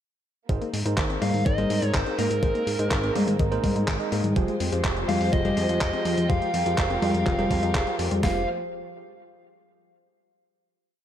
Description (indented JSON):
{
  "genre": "italo disco",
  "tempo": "124 BPM",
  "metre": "4/4",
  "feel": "straight",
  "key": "F minor",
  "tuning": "A4 = 440 Hz",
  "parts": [
    { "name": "clear symphonic string section", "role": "sustained chords", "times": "0.5-8.5 s", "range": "F3 to G5", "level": "-32 LUFS", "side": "right 1 dB", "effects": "none" },
    { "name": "wide unison pluck", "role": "arpeggios", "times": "0.5-8.5 s", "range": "Eb3 to Ab4", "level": "-34 LUFS", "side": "left 4 dB", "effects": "ping-pong delay" },
    { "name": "bell-like tine electric piano", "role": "stabs", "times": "0.5-8.4 s", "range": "Eb4 to Eb5", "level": "-31 LUFS", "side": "right 2 dB", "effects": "slow stereo tremolo, ping-pong delay" },
    { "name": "fat analog bass", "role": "bass", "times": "0.5-8.5 s", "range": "F1 to Ab2", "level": "-28 LUFS", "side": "equal", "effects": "none" },
    { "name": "clean 12-bit digital drum machine", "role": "drums", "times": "0.5-8.3 s", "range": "hi-hat, kick drum, snare drum", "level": "-26 LUFS", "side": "equal", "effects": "overdrive" },
    { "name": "dusty soul sampler-style drum kit", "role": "drums", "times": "0.5-8.2 s", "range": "congas, handclaps, hi-hat", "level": "-28 LUFS", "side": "left 1 dB", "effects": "gated reverb" },
    { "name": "fuzz lead guitar", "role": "melody", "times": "1.2-8.5 s", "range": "Bb4 to F5", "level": "-29 LUFS", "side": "left 1 dB", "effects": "distortion, tape echo" }
  ],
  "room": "light reverb",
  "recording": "none",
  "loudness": "-22 LUFS",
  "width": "side -10 dB against mid",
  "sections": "0.5-8.2 chorus; 8.2-10.2 final chord",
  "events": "none",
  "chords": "0.5 Abadd9; 4.4 Fmadd9",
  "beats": "| 0.49 0.98 1.46 1.94 | 2.43 2.91 3.40 3.88 | 4.36 4.85 5.33 5.82 | 6.30 6.78 7.27 7.75 | 8.23"
}